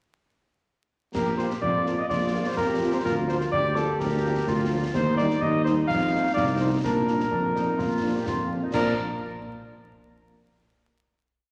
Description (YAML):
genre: military-style march for wind band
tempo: 126 BPM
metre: 2/4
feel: straight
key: Bb major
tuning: A4 = 440 Hz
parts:
  - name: warm cornet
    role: melody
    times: 1.1-8.9 s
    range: A4 to F5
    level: -29 LUFS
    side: equal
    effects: none
  - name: clear woodwind section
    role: second line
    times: 1.1-8.9 s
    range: D4 to D5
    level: -34 LUFS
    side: equal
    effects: none
  - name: dark tuba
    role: bass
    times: 1.1-8.9 s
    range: Bb1 to Bb2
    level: -29 LUFS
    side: equal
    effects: none
  - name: concert snare drum, clash cymbals and concert bass drum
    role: drums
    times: 1.1-9.0 s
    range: none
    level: -36 LUFS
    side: equal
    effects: none
  - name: mellow French horn section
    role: accompaniment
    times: 1.4-8.9 s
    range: F3 to F4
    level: -36 LUFS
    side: equal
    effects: none
room: wet scoring stage reverb, RT60 2.0 s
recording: vinyl crackle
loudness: -25 LUFS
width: mono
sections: 1.1-8.7 A section; 8.7-9.7 final chord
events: none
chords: 1.1 Bb5; 3.0 Bb/D; 4.9 Eb6; 5.9 F7; 6.8 Bb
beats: | 1.14 1.62 | 2.09 2.57 | 3.04 3.52 | 3.99 4.47 | 4.94 5.42 | 5.89 6.37 | 6.84 7.32 | 7.79 8.26 | 8.74